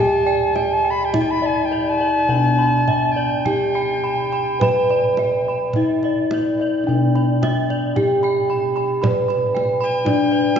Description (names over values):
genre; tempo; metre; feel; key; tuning
Javanese gamelan; 52-60 BPM; 4/4; straight; unclear; A4 = 440 Hz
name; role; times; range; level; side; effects
gamelan-type bronze metallophone; melody; 0.0-10.6 s; D4 to B4+20c; -20 LUFS; equal; none
mellow tenor recorder; second line; 0.0-10.6 s; G5+25c to B5; -22 LUFS; left 1 dB; none
gamelan-type bossed gongs; arpeggios; 0.0-10.6 s; B4+20c to B5+20c; -28 LUFS; left 3 dB; none
gamelan-type bronze metallophone; arpeggios; 0.0-10.6 s; D5 to B5+20c; -27 LUFS; right 4 dB; none
gamelan-type bossed gongs; bass; 0.0-10.6 s; D2 to B4+20c; -24 LUFS; equal; none
kendang; percussion; 0.3-10.6 s; none; -27 LUFS; right 2 dB; none
room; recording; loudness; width
wet cathedral reverb, RT60 5.2 s; recorded in a church or concert hall, nothing above 7.5 kHz; -16 LUFS; side -8 dB against mid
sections
0.0-10.6 A section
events
none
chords
none